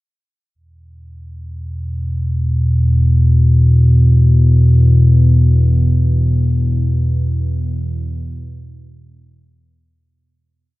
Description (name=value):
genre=ambient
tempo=free time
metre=none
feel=none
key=unclear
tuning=A4 = 437 Hz
part: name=deep rumbling drone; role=solo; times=1.6-10.3 s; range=E2 to B2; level=-12 LUFS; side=equal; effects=built-in reverb
room=moderate huge ambient reverb, RT60 8.3 s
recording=dark, warm production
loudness=-11 LUFS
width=side -19 dB against mid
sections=0.5-10.1 A section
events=fade-out 5.3-10.1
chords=0.5 E5